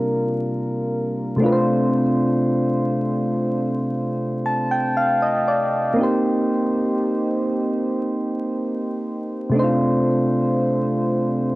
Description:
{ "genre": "R&B", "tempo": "59 BPM", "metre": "4/4", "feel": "straight", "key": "unclear", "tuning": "A4 = 436 Hz", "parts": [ { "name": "soft electric-piano-like synth keys", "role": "solo", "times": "0.0-11.6 s", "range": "C3 to A5", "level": "-19 LUFS", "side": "equal", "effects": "chorus" } ], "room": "moderate spring reverb, RT60 1.2 s", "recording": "home recording on cassette, vinyl crackle", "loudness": "-19 LUFS", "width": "side -19 dB against mid", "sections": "0.0-11.6 A section", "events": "synth keys fill 3.9-6.0", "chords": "0.0 Gm7/C; 1.4 Dm7/C; 6.0 Cm7; 9.5 Dm7/C", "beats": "0.90 | 1.91 2.93 3.95 4.96 | 5.98 7.00 8.01 9.03 | 10.05 11.06" }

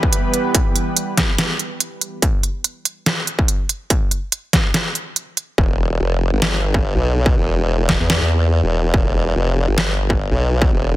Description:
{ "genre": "heavy wobble dubstep", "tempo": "143 BPM", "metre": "4/4", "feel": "swing 54% on 16ths, half-time", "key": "E phrygian", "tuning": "A4 = 440 Hz", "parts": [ { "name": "lush unison pad", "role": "sustained chords", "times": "0.0-2.2 s", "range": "E3 to B4", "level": "-23 LUFS", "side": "right 2 dB", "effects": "chorus, sidechain pumping" }, { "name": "electronic kick drum", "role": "drums", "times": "0.0-10.7 s", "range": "none", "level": "-18 LUFS", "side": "equal", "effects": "distortion" }, { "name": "dubstep drum kit", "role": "drums", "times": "0.1-9.9 s", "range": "hi-hat, snare drum", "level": "-18 LUFS", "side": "right 1 dB", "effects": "none" }, { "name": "formant-sweep wobble bass", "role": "bass", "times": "5.6-11.0 s", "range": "E1 to E2", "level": "-17 LUFS", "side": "equal", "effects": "chorus, overdrive" } ], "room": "little or no reverb", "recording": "dense, heavily limited modern master", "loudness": "-16 LUFS", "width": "side -16 dB against mid", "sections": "0.0-11.0 A section", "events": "none", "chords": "0.0 Em", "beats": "0.13 | 0.55 0.96 1.39 1.80 | 2.22 2.64 3.06 3.48 | 3.90 4.32 4.74 5.16 | 5.58 6.00 6.42 6.84 | 7.26 7.68 8.10 8.52 | 8.94 9.36 9.78 10.20 | 10.62" }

